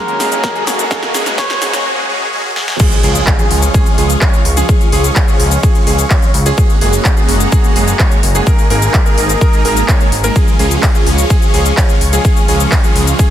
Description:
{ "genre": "EDM, festival progressive house", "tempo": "127 BPM", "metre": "4/4", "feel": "straight", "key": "Db major", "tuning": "A4 = 440 Hz", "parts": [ { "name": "trumpet with cup mute", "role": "melody", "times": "0.0-1.8 s", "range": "Gb4 to Db5", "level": "-21 LUFS", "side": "left 1 dB", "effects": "ping-pong delay" }, { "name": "direct-recorded clean electric guitar", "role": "accompaniment", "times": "0.0-1.8 s", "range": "Gb3 to Db4", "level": "-26 LUFS", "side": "right 2 dB", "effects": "phaser, sidechain pumping, ping-pong delay" }, { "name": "lush unison pad", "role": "sustained chords", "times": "0.1-13.3 s", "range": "Db4 to Db6", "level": "-24 LUFS", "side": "equal", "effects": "chorus, phaser, sidechain pumping" }, { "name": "warm concert grand piano", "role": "arpeggios", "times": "0.0-13.3 s", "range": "Ab4 to Db5", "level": "-21 LUFS", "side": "right 1 dB", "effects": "sidechain pumping, low-pass filter, ping-pong delay" }, { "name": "supersaw chords", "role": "riff", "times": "0.0-13.3 s", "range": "F3 to Db5", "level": "-18 LUFS", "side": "right 1 dB", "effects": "phaser, sidechain pumping, low-pass filter, ping-pong delay" }, { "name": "riser and impact", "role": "sound effects", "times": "0.0-4.7 s", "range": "none", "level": "-23 LUFS", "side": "equal", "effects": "none" }, { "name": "big-room dance drum kit", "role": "drums", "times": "0.1-13.3 s", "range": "crash cymbal, handclaps, hi-hat, ride cymbal, shaker, snare drum", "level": "-19 LUFS", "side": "left 1 dB", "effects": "overdrive" }, { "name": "fat analog bass", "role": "bass", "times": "0.2-13.1 s", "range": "Gb1 to Db2", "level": "-15 LUFS", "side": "equal", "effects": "sidechain pumping, high-pass filter" }, { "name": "electronic kick drum", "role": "drums", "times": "0.4-13.3 s", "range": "none", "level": "-11 LUFS", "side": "equal", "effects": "overdrive" } ], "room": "light reverb", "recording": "dense, heavily limited modern master, high-pass filter", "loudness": "-10 LUFS", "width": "side -11 dB against mid", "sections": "0.0-2.8 A section; 2.8-13.3 B section", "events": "build-up 0.0-2.8; drum fill 0.0-1.9, 2.6; riser 0.0-1.9; filter sweep on grand piano 0.0-2.8; filter sweep 0.0-2.8; drop 2.8-13.3; impact 2.8-4.7", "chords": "0.0 Gbadd9; 0.9 Absus2; 2.8 Db; 6.6 Gbadd9; 8.5 Absus2; 10.4 Db", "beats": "0.44 | 0.91 1.38 1.85 2.33 | 2.80 3.27 3.74 4.22 | 4.69 5.16 5.63 6.11 | 6.58 7.05 7.52 8.00 | 8.47 8.94 9.41 9.88 | 10.36 10.83 11.30 11.78 | 12.25 12.72 13.19" }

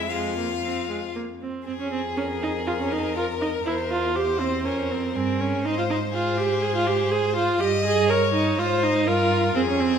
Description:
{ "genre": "quick classical-period movement for string quartet", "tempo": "122 BPM", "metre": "4/4", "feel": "rubato", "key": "F minor", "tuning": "A4 = 441 Hz", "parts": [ { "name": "rich violin", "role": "melody", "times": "0.0-10.0 s", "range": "Ab4 to F5", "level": "-30 LUFS", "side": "left 7 dB", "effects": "none" }, { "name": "rich violin", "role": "second line", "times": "0.0-10.0 s", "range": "E4 to Eb5", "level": "-30 LUFS", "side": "left 3 dB", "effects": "none" }, { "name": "rich viola", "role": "accompaniment", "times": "0.0-10.0 s", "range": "Ab3 to Bb4", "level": "-24 LUFS", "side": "right 2 dB", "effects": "none" }, { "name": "rich cello", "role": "bass", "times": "0.0-10.0 s", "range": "E2 to Ab2", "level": "-30 LUFS", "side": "right 3 dB", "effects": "none" } ], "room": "wet recital hall reverb, RT60 1.6 s", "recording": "minimal, uncompressed stereo recording", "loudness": "-21 LUFS", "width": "side -7 dB against mid", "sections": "0.0-1.7 A section; 1.7-10.0 A section", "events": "none", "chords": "0.0 Fm; 3.7 C7/E; 4.7 Fm; 5.6 Ab; 7.6 Eb7/G; 8.6 Ab", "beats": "0.10 0.63 1.15 | 1.66 2.17 2.67 3.16 | 3.66 4.16 4.65 5.15 | 5.64 6.14 6.62 7.11 | 7.60 8.09 8.58 9.07 | 9.56" }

